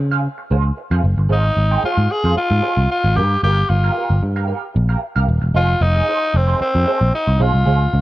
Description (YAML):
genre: disco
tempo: 113 BPM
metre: 4/4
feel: straight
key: F minor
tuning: A4 = 444 Hz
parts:
  - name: picked electric bass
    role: bass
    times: 0.0-8.0 s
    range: Eb1 to Db3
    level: -16 LUFS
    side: equal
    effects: none
  - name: clean electric guitar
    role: accompaniment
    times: 0.1-8.0 s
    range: Eb4 to G5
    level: -25 LUFS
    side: right 6 dB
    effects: wah, lush chorus
  - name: raspy tenor saxophone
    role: melody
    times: 1.3-8.0 s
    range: C4 to Ab4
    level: -19 LUFS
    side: left 1 dB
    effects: none
room: small room ambience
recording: dark, warm production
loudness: -15 LUFS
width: side -16 dB against mid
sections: 0.0-5.6 A section; 5.6-8.0 B section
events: none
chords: 0.0 Dbmaj7; 1.3 Ab6; 3.2 Ebadd9 (rootless); 5.6 Fm7